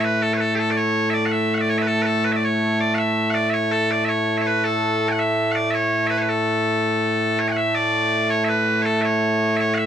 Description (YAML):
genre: scottish traditional, Scottish pipe music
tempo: 109 BPM (dotted quarters)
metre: 6/8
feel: straight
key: A major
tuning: A4 = 440 Hz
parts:
  - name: loud bright bagpipes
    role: solo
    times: 0.0-9.9 s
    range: A2 to G#5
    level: -18 LUFS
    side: equal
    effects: none
room: light reverb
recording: dry, gritty hardware recording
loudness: -18 LUFS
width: side -9 dB against mid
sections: 0.0-7.4 A section; 7.4-9.9 B section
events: none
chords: none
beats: 0.23 | 0.78 1.33 | 1.88 2.43 | 2.98 3.53 | 4.08 4.63 | 5.18 5.73 | 6.28 6.83 | 7.38 7.93 | 8.48 9.03 | 9.59